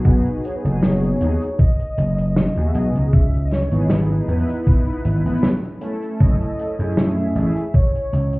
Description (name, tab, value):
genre	vaporwave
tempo	78 BPM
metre	4/4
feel	swing 53% on 16ths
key	unclear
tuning	A4 = 440 Hz
part	mellow synth brass	accompaniment	0.0-7.6 s	A3 to B4	-25 LUFS	equal	analog chorus, tape echo
part	natural country drum kit	drums	0.0-8.4 s	cabasa, hi-hat, snare drum	-23 LUFS	equal	none
part	warm velvety synth lead	melody	0.1-8.4 s	A4 to E5	-29 LUFS	equal	chorus, tape echo
part	vintage slap bass	bass	0.1-8.4 s	F#1 to F#2	-18 LUFS	equal	none
part	electronic kick drum	drums	0.1-7.9 s	none	-14 LUFS	equal	none
room	small room ambience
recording	heard muffled through a wall, club reverb, cassette tape, EQ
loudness	-16 LUFS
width	side -23 dB against mid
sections	0.0-8.4 A section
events	none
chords	0.0 G#m7; 3.1 C#m9; 6.2 F#m7